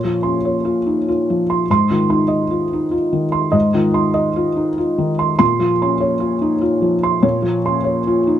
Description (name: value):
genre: neoclassical minimalist piano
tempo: 97 BPM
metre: 3/4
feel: rubato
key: Bb minor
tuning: A4 = 440 Hz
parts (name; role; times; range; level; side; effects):
- felt-muted upright piano; solo; 0.0-8.4 s; Ab2 to C6; -15 LUFS; equal; none
room: light reverb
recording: none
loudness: -15 LUFS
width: side -10 dB against mid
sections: 0.0-8.4 A section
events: none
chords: 0.0 Bbmadd9; 1.7 Fm7/Ab; 5.4 Bbmadd9